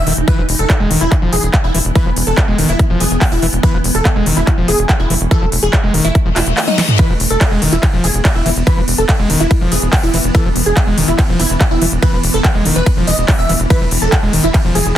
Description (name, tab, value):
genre	psychedelic trance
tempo	143 BPM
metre	4/4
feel	straight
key	E major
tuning	A4 = 440 Hz
part	supersaw stab	melody	0.0-14.9 s	D#4 to E5	-20 LUFS	right 1 dB	phaser, sidechain pumping, tape echo
part	swarming drone	sustained chords	0.0-15.0 s	E3 to D#4	-22 LUFS	right 1 dB	built-in reverb, sidechain pumping
part	tight sequencer bass	bass	0.0-14.9 s	E1	-17 LUFS	equal	none
part	screaming distorted acid line	riff	0.1-14.8 s	D#3 to F4	-20 LUFS	left 1 dB	distortion, chorus, auto-pan, cassette tape, sidechain pumping, dub echo
part	big-room dance drum kit	drums	0.1-14.9 s	handclaps, hi-hat, ride cymbal, snare drum, toms	-18 LUFS	equal	overdrive
part	electronic kick drum	drums	0.3-14.6 s	none	-14 LUFS	equal	overdrive
part	reverse cymbal and zap	sound effects	6.3-7.0 s	none	-21 LUFS	left 5 dB	none
room	little or no reverb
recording	dense, heavily limited modern master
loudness	-11 LUFS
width	side -11 dB against mid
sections	0.0-15.0 A section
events	reverse cymbal 6.3-7.0; drum fill 6.7-7.0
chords	0.0 E5